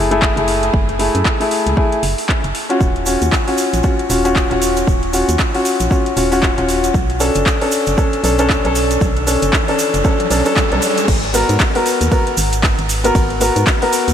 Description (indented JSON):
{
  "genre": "deep house",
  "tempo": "116 BPM",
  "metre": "4/4",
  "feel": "swing 59% on 16ths",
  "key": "unclear",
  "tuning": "A4 = 438 Hz",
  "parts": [
    { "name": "felt-muted upright piano", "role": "stabs", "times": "0.0-14.1 s", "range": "A3 to A#4", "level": "-16 LUFS", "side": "left 1 dB", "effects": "tape echo" },
    { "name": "organ-like FM bass", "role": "bass", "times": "0.0-14.1 s", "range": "D#1 to G#2", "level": "-20 LUFS", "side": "equal", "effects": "tube saturation, sidechain pumping" },
    { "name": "deep house drum kit", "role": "drums", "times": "0.1-14.1 s", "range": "crash cymbal, handclaps, hi-hat, ride cymbal", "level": "-21 LUFS", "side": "equal", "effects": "overdrive" },
    { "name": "electronic kick drum", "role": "drums", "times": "0.2-13.8 s", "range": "none", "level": "-17 LUFS", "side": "equal", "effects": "overdrive" },
    { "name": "egg shaker", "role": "percussion", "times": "2.8-14.1 s", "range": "none", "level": "-26 LUFS", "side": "right 6 dB", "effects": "none" },
    { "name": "riser", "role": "sound effects", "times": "9.1-11.1 s", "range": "none", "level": "-26 LUFS", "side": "right 1 dB", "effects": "none" }
  ],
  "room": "moderate huge ambient reverb, RT60 6.6 s",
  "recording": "dreamy mix soaked in reverb",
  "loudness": "-13 LUFS",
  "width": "side -9 dB against mid",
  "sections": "0.0-11.1 A section; 11.1-14.1 B section",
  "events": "riser 9.1-11.1; drop 11.1-14.1",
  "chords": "0.0 F#m7; 2.8 D#m7; 6.9 Bm7; 11.1 G#m7",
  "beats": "0.22 | 0.74 1.25 1.77 2.29 | 2.81 3.32 3.84 4.36 | 4.88 5.39 5.91 6.43 | 6.94 7.46 7.98 8.49 | 9.01 9.53 10.05 10.56 | 11.08 11.60 12.12 12.63 | 13.15 13.67"
}